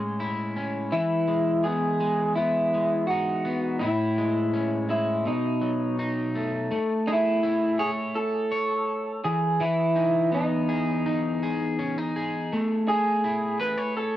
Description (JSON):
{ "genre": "indie pop", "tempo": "83 BPM", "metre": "4/4", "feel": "straight", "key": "E major", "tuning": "A4 = 440 Hz", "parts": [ { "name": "electric guitar at the edge of break-up", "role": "accompaniment", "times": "0.0-14.2 s", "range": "A2 to C#5", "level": "-26 LUFS", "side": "left 1 dB", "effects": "wide subtle chorus, warbly pitch drift, cassette tape" }, { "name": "electric guitar through a small old amp", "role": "melody", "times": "0.9-14.2 s", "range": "D#4 to B4", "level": "-26 LUFS", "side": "right 1 dB", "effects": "wide subtle chorus, tape echo" } ], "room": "wet booth ambience, RT60 0.2 s", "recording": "home recording on cassette", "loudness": "-23 LUFS", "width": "side -13 dB against mid", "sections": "0.0-6.7 A section; 6.7-14.2 B section", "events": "none", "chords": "0.0 Amaj7; 0.9 Emaj7; 3.8 Amaj7; 5.3 B7; 6.7 Amaj7; 9.2 Emaj7; 12.5 Amaj9" }